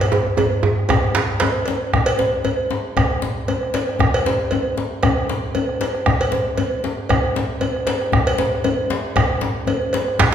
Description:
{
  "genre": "west african traditional, West African drum ensemble",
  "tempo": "116 BPM",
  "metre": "4/4",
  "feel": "swing 55% on 16ths",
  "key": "none",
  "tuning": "none",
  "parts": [
    { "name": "cowbell", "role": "percussion", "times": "0.0-10.1 s", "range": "none", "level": "-22 LUFS", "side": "right 1 dB", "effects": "none" },
    { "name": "bombo", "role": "percussion", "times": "0.1-10.3 s", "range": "none", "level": "-23 LUFS", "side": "right 2 dB", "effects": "none" },
    { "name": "djembe", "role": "percussion", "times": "0.1-10.3 s", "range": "none", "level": "-22 LUFS", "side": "left 4 dB", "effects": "none" },
    { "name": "djembe", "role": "percussion", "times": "0.1-1.5, 10.2-10.3 s", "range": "none", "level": "-18 LUFS", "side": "right 3 dB", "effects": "none" }
  ],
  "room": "wet recital hall reverb, RT60 1.5 s",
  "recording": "recorded in a church or concert hall",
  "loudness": "-17 LUFS",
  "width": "side -9 dB against mid",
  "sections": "0.0-1.9 A section; 1.9-10.3 B section",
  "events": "drum fill 0.0-1.9",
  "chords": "none"
}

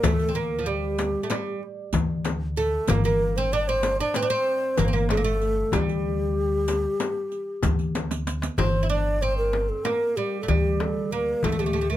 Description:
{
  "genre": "Turkish makam ensemble",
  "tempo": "190 BPM (eighths)",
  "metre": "9/8",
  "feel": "straight",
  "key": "G makam huseyni",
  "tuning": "A4 = 445 Hz",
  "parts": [
    { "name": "breathy mellow low ney", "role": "melody", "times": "0.0-12.0 s", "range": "G4 to D5", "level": "-26 LUFS", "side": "equal", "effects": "tape echo" },
    { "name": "oud", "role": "second line", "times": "0.0-12.0 s", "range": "F3 to E4-30c", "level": "-29 LUFS", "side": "right 5 dB", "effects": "none" },
    { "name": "upright bass", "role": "bass", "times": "0.0-12.0 s", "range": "G1 to D2", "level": "-27 LUFS", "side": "equal", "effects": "none" },
    { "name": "darbuka", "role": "percussion", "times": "0.0-11.6 s", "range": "none", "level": "-30 LUFS", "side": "left 3 dB", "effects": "none" },
    { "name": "frame drum", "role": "percussion", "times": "0.0-11.6 s", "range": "none", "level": "-30 LUFS", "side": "left 5 dB", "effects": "none" },
    { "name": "riq", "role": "percussion", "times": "0.0-8.6 s", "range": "none", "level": "-34 LUFS", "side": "right 6 dB", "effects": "none" }
  ],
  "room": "little or no reverb",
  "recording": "close, detailed microphones",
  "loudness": "-22 LUFS",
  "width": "side -13 dB against mid",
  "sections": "0.0-8.6 A section; 8.6-12.0 B section",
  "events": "drum fill 7.9-8.6",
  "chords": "none"
}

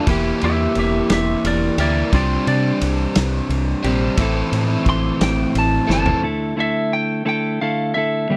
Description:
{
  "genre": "indie rock",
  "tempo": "59 BPM (dotted quarters)",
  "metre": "6/8",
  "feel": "straight",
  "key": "unclear",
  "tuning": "A4 = 439 Hz",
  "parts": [
    { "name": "lightly driven lead guitar", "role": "melody", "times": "0.0-8.4 s", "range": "F4 to C6", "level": "-25 LUFS", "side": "equal", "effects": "slapback echo" },
    { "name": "mellow electric guitar", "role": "riff", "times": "0.0-8.4 s", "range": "G2 to A4", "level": "-24 LUFS", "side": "equal", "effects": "none" },
    { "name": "overdriven electric guitar", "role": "riff", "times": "0.0-6.2 s", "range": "A2 to G4", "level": "-25 LUFS", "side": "equal", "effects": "analog chorus, slapback echo" },
    { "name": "fingered electric bass", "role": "bass", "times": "0.1-6.1 s", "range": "E1 to C3", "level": "-24 LUFS", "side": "equal", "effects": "none" },
    { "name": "raw garage drum kit", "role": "drums", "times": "0.1-6.2 s", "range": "kick drum, ride cymbal, snare drum, toms", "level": "-26 LUFS", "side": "equal", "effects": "none" }
  ],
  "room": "little or no reverb",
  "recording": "dry, close 1970s-style studio recording",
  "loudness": "-19 LUFS",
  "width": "mono",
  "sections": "0.0-6.2 A section; 6.2-8.4 B section",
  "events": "lead electric guitar solo 0.0-6.2; drum fill 5.9-6.2",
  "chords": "0.1 Edim; 2.1 Csus2; 4.2 Am; 6.2 Dsus2"
}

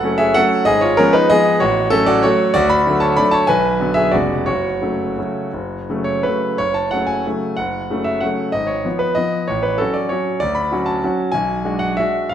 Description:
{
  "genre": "classical, piano waltz",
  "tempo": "163-204 BPM",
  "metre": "3/4",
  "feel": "rubato",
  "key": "F# minor",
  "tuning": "A4 = 440 Hz",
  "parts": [
    { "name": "bright concert grand piano", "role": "solo", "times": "0.0-12.3 s", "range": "E#1 to B5", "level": "-15 LUFS", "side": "equal", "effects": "none" }
  ],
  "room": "moderate recital hall reverb, RT60 1.6 s",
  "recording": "dark, warm production",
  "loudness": "-15 LUFS",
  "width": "side -9 dB against mid",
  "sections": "0.0-6.6 A section; 6.6-12.3 B section",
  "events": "none",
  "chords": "0.0 F#m; 0.7 Fdim/Ab; 1.6 F#m/A; 2.6 D; 3.5 G#m7b5/B; 4.1 C#7/E#; 4.5 F#m; 8.5 Fdim/Ab; 9.5 F#m/A; 10.4 Dmaj7; 11.3 G#m7b5/B"
}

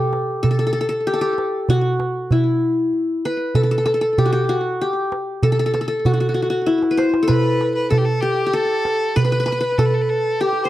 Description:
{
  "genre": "Arabic maqam ensemble",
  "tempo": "96 BPM",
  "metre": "3/4",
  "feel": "straight",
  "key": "unclear",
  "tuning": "A4 = 440 Hz",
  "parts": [
    { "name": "qanun", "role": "melody", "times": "0.0-10.7 s", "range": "E4 to C5", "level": "-19 LUFS", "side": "left 1 dB", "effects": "slapback echo" },
    { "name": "darbuka", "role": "percussion", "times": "0.1-10.5 s", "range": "none", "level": "-20 LUFS", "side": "right 2 dB", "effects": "none" },
    { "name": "rich violin", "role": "second line", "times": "7.3-10.7 s", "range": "G4 to C5", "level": "-23 LUFS", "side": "left 2 dB", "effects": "none" }
  ],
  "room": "light reverb",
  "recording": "dry, close 1970s-style studio recording",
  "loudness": "-17 LUFS",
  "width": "side -14 dB against mid",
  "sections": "0.0-10.7 A section",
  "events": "drum fill 6.7-7.3",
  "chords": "none"
}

